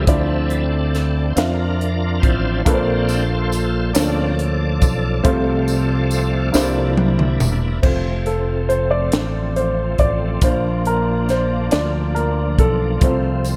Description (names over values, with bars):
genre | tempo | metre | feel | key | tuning
slow gospel | 46 BPM (dotted quarters) | 6/8 | straight | F major | A4 = 440 Hz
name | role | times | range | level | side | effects
warm upright piano | accompaniment | 0.0-13.6 s | Bb2 to F5 | -24 LUFS | equal | none
bright tonewheel organ | sustained chords | 0.0-13.6 s | F3 to E5 | -27 LUFS | equal | fast rotary speaker, overdrive, chorus vibrato
fingered electric bass | bass | 0.0-13.6 s | E1 to F2 | -23 LUFS | equal | none
crisp fusion drum kit | drums | 0.1-13.6 s | crash cymbal, hi-hat, kick drum, snare drum, toms | -21 LUFS | equal | none
tambourine | percussion | 3.1-7.8, 13.5-13.6 s | none | -33 LUFS | equal | none
dark studio string section | sustained chords | 7.8-13.6 s | F3 to F4 | -33 LUFS | equal | none
room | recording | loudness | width
light reverb, small room ambience | none | -18 LUFS | mono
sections
0.0-7.8 A section; 7.8-13.6 B section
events
tonewheel organ solo 0.0-7.8; drum fill 6.5-7.8; upright piano solo 7.8-13.6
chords
0.1 Dm9; 2.7 Bbmaj9; 5.2 F/C; 6.5 C9; 7.8 F; 10.4 Bb; 13.0 F/C